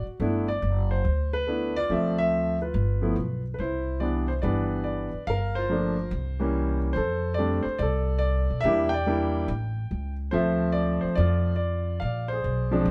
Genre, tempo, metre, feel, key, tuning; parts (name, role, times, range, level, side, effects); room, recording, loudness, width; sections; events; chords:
jazz piano trio; 142 BPM; 4/4; swing 67% on 8ths; G major, C major from 3.6 s; A4 = 441 Hz
warm concert grand piano; melody; 0.0-12.9 s; E3 to G5; -28 LUFS; equal
upright bass; bass; 0.0-12.9 s; F1 to B2; -30 LUFS; equal
moderate studio reverb, RT60 0.7 s; band playing live in one room; -26 LUFS; mono
0.0-3.6 A section; 3.6-12.9 B section
0.2 G6; 1.9 Dm7; 2.7 G7; 3.6 Cmaj7; 5.3 Gm9; 6.1 C7b9; 7.0 F6; 8.6 Em7b5; 9.5 A7; 10.3 Dm9; 12.0 Bb9